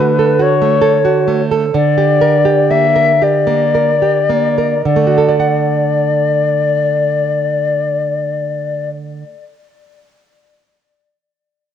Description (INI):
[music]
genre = romantic duo for flute and classical guitar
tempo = 35-48 BPM (dotted quarters)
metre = 6/8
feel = rubato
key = D major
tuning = A4 = 444 Hz
[part]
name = silver concert flute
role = melody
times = 0.0-8.9 s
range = B4 to E5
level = -14 LUFS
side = left 6 dB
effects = analog delay
[part]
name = nylon-string guitar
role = accompaniment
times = 0.0-9.8 s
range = D3 to F#5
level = -15 LUFS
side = right 6 dB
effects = cassette tape
[sound]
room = moderate spring reverb, RT60 1.6 s, small room ambience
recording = home recording on cassette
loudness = -11 LUFS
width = side -9 dB against mid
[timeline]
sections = 0.0-4.9 A section; 4.9-8.1 B section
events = slowing down 0.0-4.9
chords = 0.0 D; 1.7 Gm/D; 4.9 D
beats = 0.42 | 1.75 3.22 | 4.86 6.50